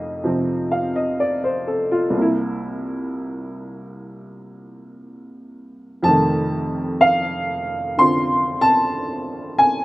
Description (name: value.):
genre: solo jazz.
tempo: 62 BPM.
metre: 4/4.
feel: swing 66% on 8ths, rubato.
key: unclear.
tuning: A4 = 440 Hz.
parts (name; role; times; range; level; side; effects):
warm upright piano; solo; 0.0-9.8 s; C2 to C6; -18 LUFS; equal; none.
room: little or no reverb.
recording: recorded outdoors, with no room sound.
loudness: -18 LUFS.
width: side -18 dB against mid.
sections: 0.0-9.8 A section.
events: none.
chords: 0.0 F7; 2.2 C7; 6.1 F7.